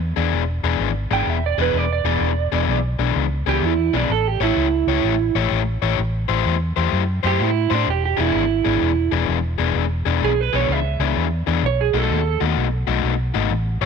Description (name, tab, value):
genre	electric blues shuffle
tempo	127 BPM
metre	4/4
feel	swing 66% on 8ths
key	E mixolydian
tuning	A4 = 440 Hz
part	vintage muted fingered electric bass	bass	0.0-13.9 s	E1 to A2	-22 LUFS	equal	none
part	overdriven electric guitar	riff	0.2-13.9 s	B2 to C#5	-22 LUFS	left 15 dB	none
part	electric guitar through a small old amp	melody	1.1-12.4 s	D4 to G5	-22 LUFS	right 12 dB	none
room	light reverb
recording	1960s-style stereo with parts hard left and right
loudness	-18 LUFS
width	side -6 dB against mid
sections	0.0-13.9 A section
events	none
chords	0.0 E7; 4.1 A7; 6.0 Am7; 7.9 E7; 11.6 B7